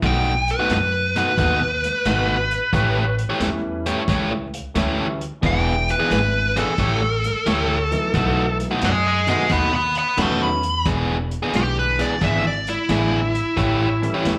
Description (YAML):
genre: electric blues shuffle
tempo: 89 BPM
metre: 4/4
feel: swing 67% on 8ths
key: E mixolydian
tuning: A4 = 441 Hz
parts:
  - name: biting overdriven guitar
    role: riff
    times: 0.0-14.3 s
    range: B2 to C#5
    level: -25 LUFS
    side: equal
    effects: slapback echo
  - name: upright bass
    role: bass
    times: 0.0-14.4 s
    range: E1 to F#2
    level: -27 LUFS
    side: equal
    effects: none
  - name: vintage drum kit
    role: drums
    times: 0.0-14.4 s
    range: hi-hat, kick drum, snare drum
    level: -30 LUFS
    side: equal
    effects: none
  - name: dark smooth lead guitar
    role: melody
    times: 0.1-14.4 s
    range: E4 to C#6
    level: -24 LUFS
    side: equal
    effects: overdrive
  - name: warm concert grand piano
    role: accompaniment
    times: 3.4-14.2 s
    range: D3 to E4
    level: -31 LUFS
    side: equal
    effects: slapback echo
room: little or no reverb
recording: live gig heard through the venue's PA, club reverb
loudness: -20 LUFS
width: mono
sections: 0.0-10.9 A section; 10.9-14.4 B section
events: lead electric guitar solo 0.0-10.9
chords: 0.0 B7; 2.7 A7; 5.4 E7; 6.8 A7; 8.1 B7; 10.9 E7; 13.6 A7